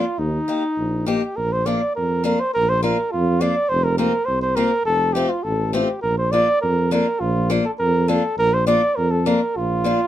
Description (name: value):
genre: alpine folk, alpine dance band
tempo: 102 BPM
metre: 2/4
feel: straight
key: Bb major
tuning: A4 = 438 Hz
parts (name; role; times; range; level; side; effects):
- mellow flugelhorn; melody; 0.0-10.1 s; Eb4 to D5; -20 LUFS; right 1 dB; none
- picked old ladder-braced acoustic guitar; accompaniment; 0.0-10.0 s; A3 to G4; -22 LUFS; left 4 dB; none
- mellow tuba; bass; 0.2-10.0 s; F1 to F2; -23 LUFS; right 1 dB; none
room: moderate small room reverb, RT60 0.5 s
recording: minimal, uncompressed stereo recording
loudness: -17 LUFS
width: side -12 dB against mid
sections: 0.0-1.4 A section; 1.4-10.1 B section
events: none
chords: 0.2 Eb; 1.4 Bb; 3.7 Fsus4; 4.9 F; 6.0 Bb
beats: | 0.20 0.79 | 1.38 1.97 | 2.55 3.12 | 3.70 4.28 | 4.86 5.45 | 6.04 6.63 | 7.22 7.80 | 8.38 8.97 | 9.56